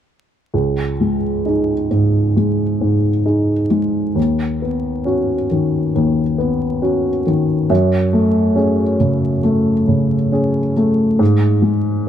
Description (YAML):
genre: neoclassical minimalist piano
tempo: 68 BPM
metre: 4/4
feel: rubato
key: unclear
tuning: A4 = 441 Hz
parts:
  - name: dark upright piano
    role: solo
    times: 0.5-12.1 s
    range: C#2 to G#4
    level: -14 LUFS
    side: equal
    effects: none
room: light reverb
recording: close, detailed microphones, vinyl crackle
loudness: -14 LUFS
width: side -10 dB against mid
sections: 0.5-12.1 A section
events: none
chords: 0.5 C#sus2; 4.2 Badd9/D#; 7.7 F#madd9; 11.2 N.C.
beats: | 0.54 1.45 2.36 3.26 | 4.16 5.06 5.95 6.82 | 7.70 8.57 9.44 10.33 | 11.20 12.08